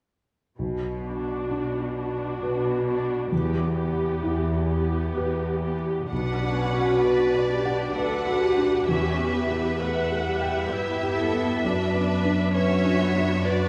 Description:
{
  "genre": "cinematic, emotional film score for orchestra",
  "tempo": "65 BPM",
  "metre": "3/4",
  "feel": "rubato",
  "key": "B minor",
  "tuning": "A4 = 439 Hz",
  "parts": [
    { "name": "dark concert grand piano", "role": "accompaniment", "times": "0.6-13.7 s", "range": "B1 to G5", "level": "-28 LUFS", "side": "equal", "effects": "none" },
    { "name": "rich symphonic cello section", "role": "bass", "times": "0.6-13.7 s", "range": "D2 to B2", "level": "-31 LUFS", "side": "equal", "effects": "none" },
    { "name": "warm symphonic viola section", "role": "accompaniment", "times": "1.1-13.7 s", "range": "G3 to F#5", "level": "-32 LUFS", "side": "equal", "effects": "none" },
    { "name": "rich symphonic violin section", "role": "second line", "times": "6.1-13.7 s", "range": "G4 to F#5", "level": "-31 LUFS", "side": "equal", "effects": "none" }
  ],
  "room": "wet recital hall reverb, RT60 1.7 s",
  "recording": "heard from further back in the room",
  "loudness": "-25 LUFS",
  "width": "mono",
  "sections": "0.6-6.1 A section; 6.1-13.7 B section",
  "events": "none",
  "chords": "0.6 Bm; 3.3 Em; 6.1 Bm; 8.9 Em; 11.6 Bm/F#"
}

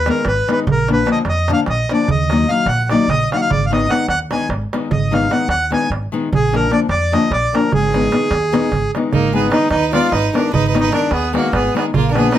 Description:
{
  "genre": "balkan folk, Balkan wedding band",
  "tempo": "298 BPM (eighths)",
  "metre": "7/8",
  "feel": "straight",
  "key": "Ab dorian sharp4",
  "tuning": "A4 = 440 Hz",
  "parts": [
    { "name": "accordion", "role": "melody", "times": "0.0-12.4 s", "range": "Bb3 to Ab5", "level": "-18 LUFS", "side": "equal", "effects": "none" },
    { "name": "upright bass", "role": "bass", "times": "0.0-12.3 s", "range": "Ab1 to F2", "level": "-21 LUFS", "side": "equal", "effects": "none" },
    { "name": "nylon-string guitar", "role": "accompaniment", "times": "0.1-12.4 s", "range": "D3 to Eb4", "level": "-18 LUFS", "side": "left 4 dB", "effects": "none" },
    { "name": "darbuka", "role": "percussion", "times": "0.1-12.4 s", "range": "none", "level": "-22 LUFS", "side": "right 5 dB", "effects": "none" },
    { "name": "clear violin", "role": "second line", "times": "9.1-12.4 s", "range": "Eb4 to D5", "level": "-22 LUFS", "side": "right 7 dB", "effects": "none" }
  ],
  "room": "light reverb",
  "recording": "none",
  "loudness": "-14 LUFS",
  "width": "side -11 dB against mid",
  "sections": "0.0-9.1 A section; 9.1-12.4 A section",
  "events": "none",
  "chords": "0.0 Abm; 0.7 Bb; 2.1 Ebm; 3.5 Abm; 6.3 Bb; 7.7 Abm"
}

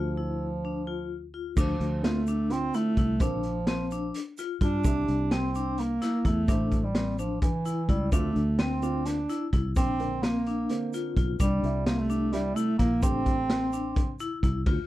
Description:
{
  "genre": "progressive instrumental, band music in an uneven meter",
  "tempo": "256 BPM (eighths)",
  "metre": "7/8",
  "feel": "straight",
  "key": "D minor",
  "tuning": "A4 = 440 Hz",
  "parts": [
    { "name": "mellow bass clarinet", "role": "melody", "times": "0.0-14.2 s", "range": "E3 to D4", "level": "-29 LUFS", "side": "right 2 dB", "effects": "none" },
    { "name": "vibraphone with medium hard mallets", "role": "arpeggios", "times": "0.0-14.8 s", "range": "C4 to F4", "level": "-34 LUFS", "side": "left 7 dB", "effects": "none" },
    { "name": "fingered electric bass", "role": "bass", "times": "0.0-14.8 s", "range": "A1 to G2", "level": "-31 LUFS", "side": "equal", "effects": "none" },
    { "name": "raw garage drum kit", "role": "drums", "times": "1.6-14.8 s", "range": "crash cymbal, hi-hat, kick drum, ride cymbal, snare drum", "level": "-29 LUFS", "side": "equal", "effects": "none" },
    { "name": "egg shaker", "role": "percussion", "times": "1.6-14.4 s", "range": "none", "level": "-47 LUFS", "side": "right 14 dB", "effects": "none" },
    { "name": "dark grand piano", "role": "accompaniment", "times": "2.0-13.7 s", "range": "C3 to C5", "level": "-36 LUFS", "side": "right 6 dB", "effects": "none" }
  ],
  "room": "light reverb",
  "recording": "none",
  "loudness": "-25 LUFS",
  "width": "side -15 dB against mid",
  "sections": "0.0-1.6 A section; 1.6-14.7 B section",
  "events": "none",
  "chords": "0.0 F5/D; 1.6 Dm7; 3.2 Bbadd9; 4.9 C; 6.5 Am; 8.1 Dm7; 9.8 Bbadd9; 11.4 C; 13.0 Am7"
}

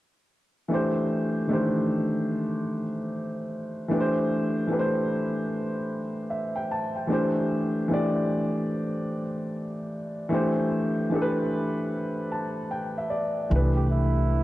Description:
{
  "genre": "lo-fi hip hop",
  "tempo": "75 BPM",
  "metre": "4/4",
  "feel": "swing 63% on 16ths",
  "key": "unclear",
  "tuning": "A4 = 440 Hz",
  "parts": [
    { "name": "dark upright piano", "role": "accompaniment", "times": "0.7-14.4 s", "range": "D#3 to A5", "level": "-25 LUFS", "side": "equal", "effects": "cassette tape, low-pass filter" },
    { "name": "upright bass", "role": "bass", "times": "13.5-14.4 s", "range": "C2", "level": "-22 LUFS", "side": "equal", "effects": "none" },
    { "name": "mellow flugelhorn", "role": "melody", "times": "13.8-14.4 s", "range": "E4 to G4", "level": "-30 LUFS", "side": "right 6 dB", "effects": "low-pass filter" }
  ],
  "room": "moderate spring reverb, RT60 2.3 s",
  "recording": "dark, warm production, lossy compression artefacts",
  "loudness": "-24 LUFS",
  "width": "side -16 dB against mid",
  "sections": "0.7-13.5 A section",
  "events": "upright piano fill 11.9-13.5",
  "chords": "0.7 C; 3.9 Am7; 7.1 C; 10.3 Am7; 13.5 Cmaj7"
}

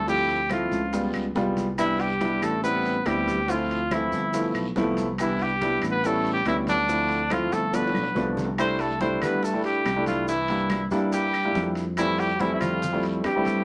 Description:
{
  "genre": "Afro-Cuban jazz",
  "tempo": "141 BPM",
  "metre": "4/4",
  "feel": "straight",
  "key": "C major",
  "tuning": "A4 = 440 Hz",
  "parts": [
    { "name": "clear trumpet", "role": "melody", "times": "0.0-13.6 s", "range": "D4 to C5", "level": "-28 LUFS", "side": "equal", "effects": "none" },
    { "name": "bright trombone", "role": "second line", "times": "0.0-13.6 s", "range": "D3 to C4", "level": "-39 LUFS", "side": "equal", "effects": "none" },
    { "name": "sustaining fretless electric bass", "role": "bass", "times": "0.0-13.6 s", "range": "G1 to G2", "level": "-33 LUFS", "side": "equal", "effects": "none" },
    { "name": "warm grand piano", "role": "accompaniment", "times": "0.1-13.6 s", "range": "F3 to F4", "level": "-29 LUFS", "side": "equal", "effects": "none" },
    { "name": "bongos", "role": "percussion", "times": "0.1-13.6 s", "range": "none", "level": "-43 LUFS", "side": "equal", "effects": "none" },
    { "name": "congas", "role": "percussion", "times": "0.1-13.6 s", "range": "none", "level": "-38 LUFS", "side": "equal", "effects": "none" },
    { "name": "guiro", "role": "percussion", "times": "0.1-13.6 s", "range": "none", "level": "-50 LUFS", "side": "equal", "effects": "none" },
    { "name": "maracas", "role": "percussion", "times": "0.1-13.6 s", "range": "none", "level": "-49 LUFS", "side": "equal", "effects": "none" },
    { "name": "timbales", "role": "percussion", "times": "0.3-13.6 s", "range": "none", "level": "-41 LUFS", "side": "equal", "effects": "none" },
    { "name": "claves", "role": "percussion", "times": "0.5-13.5 s", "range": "none", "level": "-39 LUFS", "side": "equal", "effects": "none" }
  ],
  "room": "wet club reverb, RT60 0.6 s",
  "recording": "none",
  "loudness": "-25 LUFS",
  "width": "mono",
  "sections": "0.0-8.6 A section; 8.6-13.6 B section",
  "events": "drum fill 7.7-8.6",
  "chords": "0.1 Dm7; 0.9 Db7#11; 1.8 Am9; 3.5 Dm7; 4.3 G13; 5.2 Cmaj9; 6.0 A7; 6.9 Dm7; 7.7 G7; 8.6 C69; 10.3 C9; 12.0 Fmaj9"
}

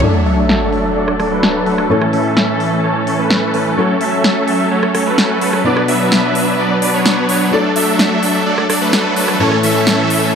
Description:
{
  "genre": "EDM, festival progressive house",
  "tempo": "128 BPM",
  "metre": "4/4",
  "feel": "straight",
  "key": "unclear",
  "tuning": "A4 = 440 Hz",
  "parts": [
    { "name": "felt-muted upright piano", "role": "accompaniment", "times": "0.0-10.3 s", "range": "A2 to B4", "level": "-21 LUFS", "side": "left 4 dB", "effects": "dub echo" },
    { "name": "dark studio string section", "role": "sustained chords", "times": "0.0-10.3 s", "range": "E3 to B4", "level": "-21 LUFS", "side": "equal", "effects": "low-pass filter" },
    { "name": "supersaw chords", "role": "riff", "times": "0.0-10.3 s", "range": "E3 to E5", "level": "-14 LUFS", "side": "right 1 dB", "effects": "low-pass filter, dub echo" },
    { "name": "sub drop", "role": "sound effects", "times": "0.0-1.9 s", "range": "none", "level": "-20 LUFS", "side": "equal", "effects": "none" },
    { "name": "big-room dance drum kit", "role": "drums", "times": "0.3-10.2 s", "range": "hi-hat, rim click, snare drum", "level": "-19 LUFS", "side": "equal", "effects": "overdrive, low-pass filter on hats, low-pass filter on cymbals, low-pass filter on snare" }
  ],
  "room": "moderate huge ambient reverb, RT60 4.6 s",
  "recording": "none",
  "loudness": "-12 LUFS",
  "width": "side -7 dB against mid",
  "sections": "0.0-10.3 A section",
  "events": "impact 0.0-1.9; filter sweep on drum 0.0-10.3; filter sweep on supersaw synth 0.0-10.3; filter sweep on string section 0.0-10.3",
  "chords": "0.0 D; 1.9 A; 3.8 F#m; 5.7 Bm; 7.5 D; 9.4 A"
}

